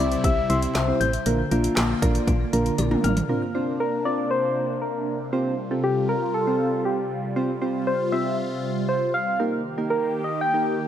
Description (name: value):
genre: synth-pop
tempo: 118 BPM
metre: 4/4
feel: straight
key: unclear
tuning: A4 = 440 Hz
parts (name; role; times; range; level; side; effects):
- soft struck synth lead; melody; 0.0-10.9 s; G4 to G5; -25 LUFS; left 1 dB; chorus, digital delay
- soft electric-piano-like synth keys; accompaniment; 0.0-10.9 s; Bb3 to C5; -27 LUFS; right 2 dB; chorus
- phased analog pad; sustained chords; 0.0-10.9 s; C3 to G4; -29 LUFS; left 1 dB; phaser, chorus
- bell-like tine electric piano; arpeggios; 0.0-3.3 s; D3 to G6; -29 LUFS; left 6 dB; phaser, digital delay
- solid FM bass; bass; 0.0-3.2 s; A1 to C2; -25 LUFS; equal; none
- deep house drum kit; drums; 0.1-3.3 s; handclaps, hi-hat, kick drum, snare drum, toms; -26 LUFS; equal; none
room: light reverb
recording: none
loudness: -21 LUFS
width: side -10 dB against mid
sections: 0.0-3.3 A section; 3.3-10.9 B section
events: drum fill 2.8-3.3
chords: 0.0 C; 1.3 Bb; 3.3 Bbadd9; 5.3 Csus4; 7.4 Fsus2; 9.4 Eb